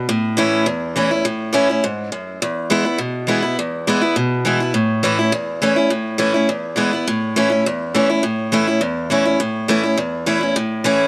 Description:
rock; 206 BPM; 4/4; straight; A major; A4 = 442 Hz
picked steel-string acoustic guitar; solo; 0.0-11.1 s; E2 to E4; -18 LUFS; equal
light reverb, small room ambience; -19 LUFS; mono
0.0-7.1 A section; 7.1-11.1 A section
0.1 A; 2.4 E; 4.7 A; 6.5 E; 7.1 A

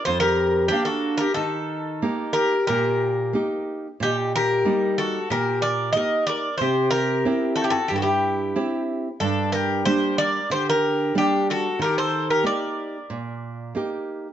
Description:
greek folk, Greek bouzouki band; 92 BPM; 4/4; straight; A4 = 441 Hz
Greek bouzouki; melody; 0.0-14.0 s; G4 to Eb5; -23 LUFS; equal
mandolin; second line; 0.0-14.0 s; D4 to Bb4; -26 LUFS; left 3 dB; tape echo
nylon-string guitar; accompaniment; 0.1-14.3 s; F2 to F5; -26 LUFS; right 3 dB
moderate studio reverb, RT60 0.6 s; dark, warm production, nothing above 7.8 kHz; -20 LUFS; side -10 dB against mid
0.0-14.3 A section
0.0 Bb; 1.4 Eb; 6.6 C; 9.2 Gm; 11.8 Eb

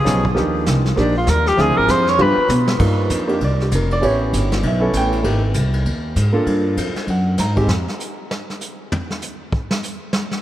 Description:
jazz, small-group swing and bop; 196 BPM; 4/4; swing 61% on 8ths; A4 = 440 Hz
clear tenor saxophone; melody; 0.0-2.5 s; D4 to Db5; -20 LUFS; left 1 dB
warm grand piano; accompaniment; 0.0-7.7 s; F3 to Bb5; -21 LUFS; right 1 dB
upright bass; bass; 0.0-7.9 s; F1 to B2; -18 LUFS; equal
vintage brush drum kit; drums; 0.1-10.4 s; brushed snare drum, crash cymbal, hi-hat, kick drum, ride cymbal, snare drum, toms; -25 LUFS; equal
moderate cathedral reverb, RT60 4.9 s; in a vast, echoing space; -16 LUFS; side -13 dB against mid
0.0-2.8 A section; 2.8-10.4 A section
tenor saxophone solo 0.0-2.8; drum fill 2.2-2.8; drum solo 7.7-10.4
0.4 Ebmaj7; 1.6 Dm7b5; 2.2 G7; 2.8 Cm11; 4.0 A9; 5.2 Abmaj7; 6.5 Gm7; 7.1 F#sus2; 7.7 N.C.

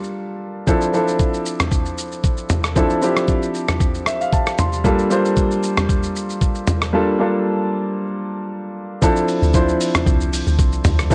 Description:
amapiano; 115 BPM; 4/4; swing 55% on 16ths; A4 = 440 Hz
warm concert grand piano; accompaniment; 0.0-11.1 s; F3 to C6; -22 LUFS; equal
dusty soul sampler-style drum kit; drums; 0.0-11.1 s; hi-hat, kick drum, rim click, shaker, toms; -21 LUFS; equal
deep log drum bass; bass; 9.4-11.1 s; C2 to D2; -21 LUFS; equal
light reverb, digital ambience; worn, warbling old tape, cassette tape, warbly pitch drift; -19 LUFS; mono
0.0-9.0 A section; 9.0-11.1 B section
break 0.2-0.7, 6.9-9.0; grand piano fill 3.8-4.8; drop 9.0-11.1
0.0 Gm9; 0.7 Dm9; 4.8 Gm9; 9.0 Dm9

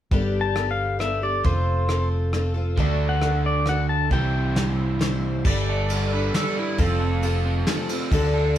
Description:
folk rock and heartland rock; 135 BPM; 3/4; straight; G mixolydian; A4 = 440 Hz
picked twelve-string acoustic guitar; accompaniment; 0.1-8.6 s; C3 to C5; -27 LUFS; left 2 dB
picked electric bass; bass; 0.1-8.6 s; F1 to D2; -24 LUFS; right 1 dB
soft brush drum kit; drums; 0.1-8.6 s; crash cymbal, kick drum, ride cymbal, rim click, snare drum; -26 LUFS; equal
pedal steel guitar; melody; 0.4-5.0 s; C5 to A5; -26 LUFS; left 3 dB
crunchy overdriven guitar; riff; 2.8-8.6 s; C3 to A4; -29 LUFS; right 2 dB
overdriven slide guitar; second line; 5.5-7.2 s; C4 to D5; -29 LUFS; right 4 dB
moderate stone room reverb, RT60 1.0 s; band playing live in one room; -20 LUFS; side -11 dB against mid
0.1-5.4 A section; 5.4-8.6 B section
0.1 Gadd9; 1.4 F; 2.8 D; 4.1 C; 5.4 Gadd9; 6.8 F

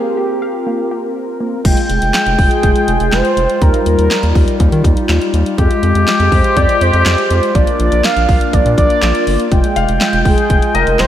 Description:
synth-pop; 122 BPM; 4/4; straight; F dorian; A4 = 440 Hz
mellow horn-like synth lead; melody; 0.0-11.1 s; G4 to F5; -18 LUFS; right 2 dB; chorus, tape echo
mellow synth brass; accompaniment; 0.0-11.1 s; G3 to G5; -19 LUFS; left 2 dB; chorus
warbly dusty pluck; arpeggios; 0.0-1.5 s; Bb3 to F5; -25 LUFS; equal; chorus, tape echo
warm woodwind section; sustained chords; 1.6-11.1 s; G3 to G5; -18 LUFS; left 2 dB
round analog bass; bass; 1.6-11.1 s; F1 to Eb3; -15 LUFS; equal
house drum kit; drums; 1.6-11.1 s; crash cymbal, handclaps, hi-hat, kick drum, snare drum; -15 LUFS; equal
clear concert grand piano; second line; 9.8-10.8 s; Eb5 to F5; -20 LUFS; left 7 dB; tape echo
moderate lush hall reverb, RT60 2.3 s; dreamy mix soaked in reverb; -11 LUFS; side -11 dB against mid
0.0-1.6 A section; 1.6-11.1 B section
break 0.0-1.6
0.0 C7sus4; 1.6 Fmadd9; 3.6 Ebadd9; 5.6 Fmadd9; 7.6 Bb; 9.5 Fmadd9

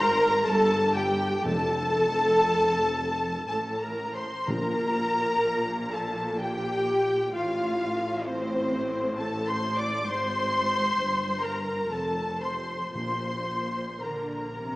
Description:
classical, slow romantic movement for symphony orchestra; 55-67 BPM; 3/4; rubato; A4 = 440 Hz
clear symphonic violin section; melody; 0.0-14.8 s; C5 to D6; -30 LUFS; left 1 dB
warm studio violin section; second line; 0.0-14.8 s; C5 to D6; -33 LUFS; left 1 dB
warm symphonic viola section; accompaniment; 0.0-14.8 s; C4 to D5; -28 LUFS; equal
rich symphonic double bass section; bass; 0.0-14.8 s; F1 to Bb1; -37 LUFS; right 1 dB
warm symphonic cello section; bass; 0.0-14.8 s; F2 to D3; -34 LUFS; equal
timpani; percussion; 1.5-5.9, 12.9-14.5 s; F2 to Bb2; -35 LUFS; equal
wet concert hall reverb, RT60 2.3 s; small speaker sound; -24 LUFS; side -19 dB against mid
0.0-14.8 A section
0.5 Gsus2; 1.5 F; 4.5 Gmadd9/Bb; 7.3 F/A; 10.1 Ab; 11.0 Gmadd11; 11.9 F; 13.0 Bb

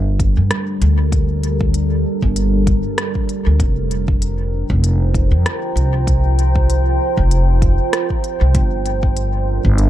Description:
ambient dub; 97 BPM; 4/4; swing 56% on 16ths; G minor; A4 = 438 Hz
deep dark ambient pad; sustained chords; 0.0-9.9 s; G3 to Bb5; -22 LUFS; right 1 dB; chorus, built-in reverb
upright bass; bass; 0.0-9.9 s; F1 to G2; -15 LUFS; equal
electronic kick drum; drums; 0.2-9.8 s; -18 LUFS; equal
organic electronic drum kit; drums; 0.2-9.9 s; hi-hat, rim click; -24 LUFS; left 1 dB; dub echo
digital ambience; dark, warm production; -14 LUFS; side -13 dB against mid
0.0-9.9 A section
0.0 Gmadd9; 3.6 Fsus4; 8.5 Gm11

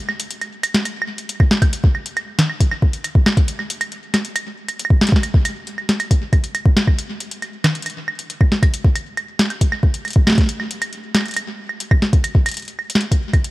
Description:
IDM; 137 BPM; 4/4; straight
booming analog drum machine; drums; 0.1-13.5 s; claves, hi-hat, snare drum; -20 LUFS; equal; studio reverb, tape echo
electronic kick drum; drums; 1.4-13.4 s; -14 LUFS; equal; overdrive, studio reverb
little or no reverb; -16 LUFS; side -19 dB against mid
0.0-13.5 A section

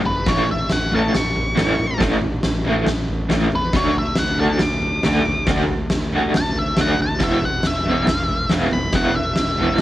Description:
garage rock duo or trio; 138 BPM; 4/4; straight; A4 = 445 Hz
crunchy overdriven guitar; riff; 0.0-9.8 s; A2 to F#4; -20 LUFS; equal; tremolo, cassette tape
fuzz fingered electric bass; bass; 0.0-9.8 s; E1 to E2; -26 LUFS; equal; overdrive
octave-fuzz lead guitar; melody; 0.1-9.8 s; B4 to D6; -23 LUFS; equal; distortion, cassette tape
oversized low-tuned drum kit; drums; 0.1-9.8 s; kick drum, snare drum, toms; -21 LUFS; equal; cassette tape
light reverb, studio reverb; home recording on cassette; -17 LUFS; side -14 dB against mid
0.0-9.8 A section
0.3 A; 3.7 D; 7.2 E

